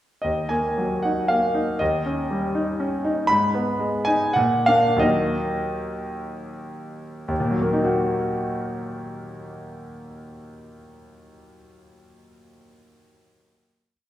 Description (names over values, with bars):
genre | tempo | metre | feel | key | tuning
classical, romantic character piece for solo piano | 73-124 BPM | 3/4 | rubato | Eb minor | A4 = 439 Hz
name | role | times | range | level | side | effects
clear grand piano | solo | 0.2-13.9 s | Eb2 to Cb6 | -21 LUFS | equal | none
room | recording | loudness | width
wet recital hall reverb, RT60 1.4 s | heard from further back in the room | -20 LUFS | side -12 dB against mid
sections
0.2-7.3 A section; 7.3-11.7 final chord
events
slowing down 2.6-7.3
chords
0.2 Ebm; 1.8 Eb7; 3.3 Abm; 4.4 Bb; 5.0 Ebm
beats
| 0.25 0.78 1.30 | 1.81 2.30 2.80 | 3.29 3.79 4.37 | 5.03 5.77 6.52 | 7.30 8.01 8.73 | 9.45 10.18 10.92